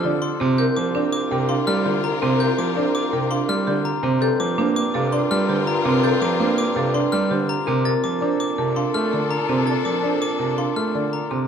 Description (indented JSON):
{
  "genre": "classical, minimalist pattern music",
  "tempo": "165 BPM",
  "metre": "5/4",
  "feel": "straight",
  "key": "unclear",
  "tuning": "A4 = 439 Hz",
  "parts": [
    { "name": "folk marimba with medium mallets", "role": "melody", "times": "0.0-11.5 s", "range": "A4 to A5", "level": "-28 LUFS", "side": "left 7 dB", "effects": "none" },
    { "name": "warm grand piano", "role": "accompaniment", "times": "0.0-11.5 s", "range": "C3 to C4", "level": "-24 LUFS", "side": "right 3 dB", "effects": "none" },
    { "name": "warm symphonic string section", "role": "sustained chords", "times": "0.0-11.3 s", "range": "D4 to Bb4", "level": "-29 LUFS", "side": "left 5 dB", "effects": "none" },
    { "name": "glockenspiel with hard plastic mallets", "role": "arpeggios", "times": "0.0-11.4 s", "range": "Bb5 to A6", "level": "-27 LUFS", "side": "left 5 dB", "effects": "none" },
    { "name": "marimba with medium hard mallets", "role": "arpeggios", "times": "0.0-11.5 s", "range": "C4 to Bb4", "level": "-24 LUFS", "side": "right 5 dB", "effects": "none" },
    { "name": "mellow bassoon", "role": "bass", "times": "0.0-11.4 s", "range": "C2 to Bb2", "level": "-27 LUFS", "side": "equal", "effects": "none" }
  ],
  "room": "moderate scoring stage reverb, RT60 1.8 s",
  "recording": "close, detailed microphones",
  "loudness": "-18 LUFS",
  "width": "side -7 dB against mid",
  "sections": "0.0-11.5 A section",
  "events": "none",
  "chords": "0.0 F6; 0.6 C7sus4; 4.2 Gm9; 7.9 Bbmaj7"
}